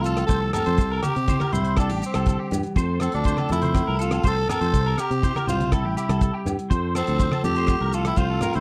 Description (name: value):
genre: highlife guitar band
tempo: 122 BPM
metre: 4/4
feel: straight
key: F major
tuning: A4 = 440 Hz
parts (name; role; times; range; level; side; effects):
- raspy tenor saxophone; melody; 0.0-8.6 s; C4 to A4; -29 LUFS; equal; slapback echo
- picked plugged-in steel-string acoustic guitar; accompaniment; 0.0-8.6 s; C3 to A4; -33 LUFS; equal; none
- clean electric guitar; arpeggios; 0.0-8.6 s; G4 to C5; -33 LUFS; equal; ensemble chorus, slapback echo
- fingered electric bass; bass; 0.0-8.6 s; A1 to C3; -27 LUFS; equal; none
- cloth-damped thuddy drum kit; drums; 0.0-8.6 s; hi-hat, kick drum, rim click; -26 LUFS; equal; none
- maracas; percussion; 0.1-8.6 s; none; -44 LUFS; equal; none
- agogo bells; percussion; 0.2-8.5 s; none; -40 LUFS; equal; none
- congas; percussion; 0.5-8.5 s; none; -32 LUFS; equal; none
room: little or no reverb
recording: dry, close 1970s-style studio recording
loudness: -23 LUFS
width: mono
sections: 0.0-8.6 A section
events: none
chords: 0.0 F; 0.8 C; 2.8 F; 4.7 C; 6.7 F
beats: 0.30 | 0.80 1.29 1.78 2.28 | 2.77 3.26 3.75 4.25 | 4.74 5.23 5.72 6.21 | 6.71 7.20 7.69 8.18